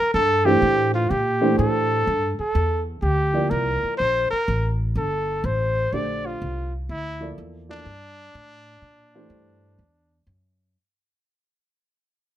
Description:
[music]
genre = modal jazz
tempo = 124 BPM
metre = 4/4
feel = swing 67% on 8ths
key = G dorian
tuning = A4 = 440 Hz
[part]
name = mellow trumpet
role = melody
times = 0.0-10.2 s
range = D4 to D5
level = -22 LUFS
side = equal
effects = plate reverb
[part]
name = upright bass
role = bass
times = 0.1-10.7 s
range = G1 to Bb2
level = -25 LUFS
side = equal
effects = none
[part]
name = dark upright piano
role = accompaniment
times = 0.5-9.8 s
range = D3 to D5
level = -24 LUFS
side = right 1 dB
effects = none
[sound]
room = light reverb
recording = none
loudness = -20 LUFS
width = side -12 dB against mid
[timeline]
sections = 0.0-10.8 A section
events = fade-out 0.0-10.8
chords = 0.0 Gm69

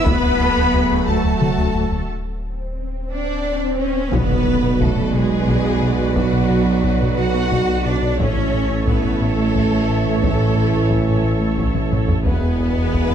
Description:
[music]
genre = cinematic, hybrid orchestral and electronic film score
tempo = 59 BPM (dotted quarters)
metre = 6/8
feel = straight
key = B dorian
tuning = A4 = 440 Hz
[part]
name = warm symphonic violin section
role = melody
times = 0.0-13.1 s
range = D5 to B5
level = -30 LUFS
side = left 2 dB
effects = none
[part]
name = rich studio violin section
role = second line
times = 0.0-13.1 s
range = F#4 to F#5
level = -28 LUFS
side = left 4 dB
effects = none
[part]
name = rich symphonic viola section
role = accompaniment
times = 0.0-13.1 s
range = F#4 to C#5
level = -27 LUFS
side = right 1 dB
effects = none
[part]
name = mellow French horn section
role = sustained chords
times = 0.0-13.1 s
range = A3 to D5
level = -29 LUFS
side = left 4 dB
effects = none
[part]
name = rich chamber cello section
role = bass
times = 0.0-13.1 s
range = F#3 to F#4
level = -23 LUFS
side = right 3 dB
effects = none
[part]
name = warm sub bass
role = bass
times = 0.0-13.1 s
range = D1 to B1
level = -27 LUFS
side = left 1 dB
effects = none
[part]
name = warm trombone section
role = sustained chords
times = 0.1-13.1 s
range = B2 to A3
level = -26 LUFS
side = right 4 dB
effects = none
[part]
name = round analog bass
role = riff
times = 0.1-13.1 s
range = D2 to B3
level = -24 LUFS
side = left 3 dB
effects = none
[part]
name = rich symphonic double bass section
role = bass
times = 0.1-13.1 s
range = A1 to E2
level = -25 LUFS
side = right 3 dB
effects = none
[part]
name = warm tuba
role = bass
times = 0.1-13.1 s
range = E1 to D2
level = -24 LUFS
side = right 3 dB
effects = none
[part]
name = taiko ensemble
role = drums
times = 0.1-13.1 s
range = none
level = -24 LUFS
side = equal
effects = none
[part]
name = swell and impact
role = sound effects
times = 2.6-6.2 s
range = none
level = -26 LUFS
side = left 1 dB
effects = none
[sound]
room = moderate scoring stage reverb, RT60 1.9 s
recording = dark, warm production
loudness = -16 LUFS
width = side -8 dB against mid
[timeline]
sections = 0.0-4.1 A section; 4.1-13.1 B section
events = break 2.1-4.1; swell 2.6-4.1; drum fill 3.6-4.1, 11.8-12.3; impact 4.1-6.2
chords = 0.1 D; 4.1 Bm; 8.2 A; 12.3 E

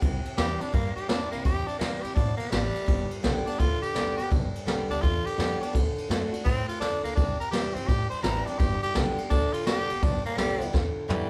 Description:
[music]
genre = rockabilly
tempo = 168 BPM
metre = 4/4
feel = swing 64% on 8ths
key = G mixolydian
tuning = A4 = 438 Hz
[part]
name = picked steel-string acoustic guitar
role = accompaniment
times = 0.0-11.3 s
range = G2 to G4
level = -35 LUFS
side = equal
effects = none
[part]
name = upright bass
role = bass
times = 0.0-11.3 s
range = G1 to A2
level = -34 LUFS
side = equal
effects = none
[part]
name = vintage brush drum kit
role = drums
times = 0.0-11.2 s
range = kick drum, ride cymbal, snare drum, toms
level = -30 LUFS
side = equal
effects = none
[part]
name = raspy tenor saxophone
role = melody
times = 0.4-11.3 s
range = E3 to C5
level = -33 LUFS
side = equal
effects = none
[sound]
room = moderate large studio reverb, RT60 0.8 s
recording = band playing live in one room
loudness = -27 LUFS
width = mono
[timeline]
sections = 0.0-11.3 A section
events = tenor saxophone solo 0.0-11.3; drum fill 10.7-11.3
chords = 0.0 C; 2.9 G; 5.7 D; 7.2 C; 8.6 G

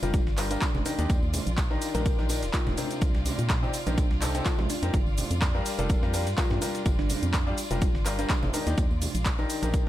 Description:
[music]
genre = piano house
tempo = 125 BPM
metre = 4/4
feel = swing 54% on 16ths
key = G minor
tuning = A4 = 440 Hz
[part]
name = thumb-piano-like synth pluck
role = melody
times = 0.0-9.9 s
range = D4 to Bb4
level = -36 LUFS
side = equal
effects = chorus, tape echo
[part]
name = rich studio violin section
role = sustained chords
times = 0.0-9.9 s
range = F4 to D5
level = -39 LUFS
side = equal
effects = sidechain pumping
[part]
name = bright grand piano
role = riff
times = 0.0-9.9 s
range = C3 to D5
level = -33 LUFS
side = left 3 dB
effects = sidechain pumping, tape echo
[part]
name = organ-like FM bass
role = bass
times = 0.0-9.9 s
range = Eb1 to Bb2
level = -30 LUFS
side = equal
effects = sidechain pumping
[part]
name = house drum kit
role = drums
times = 0.0-9.8 s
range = cabasa, handclaps, hi-hat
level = -34 LUFS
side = equal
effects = overdrive
[part]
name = congas and tambourine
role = percussion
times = 0.0-9.8 s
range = none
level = -38 LUFS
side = right 4 dB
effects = none
[part]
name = breakbeat sampler-style drum kit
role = drums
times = 0.1-9.9 s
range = hi-hat, snare drum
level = -43 LUFS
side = equal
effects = none
[part]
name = electronic kick drum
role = drums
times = 0.1-9.8 s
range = none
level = -26 LUFS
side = equal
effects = none
[sound]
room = little or no reverb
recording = none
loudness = -24 LUFS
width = side -14 dB against mid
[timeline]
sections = 0.0-9.9 A section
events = none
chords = 0.0 Gm7; 0.9 Ebmaj7; 3.0 Cm7; 4.9 Gm7; 8.5 Ebmaj7

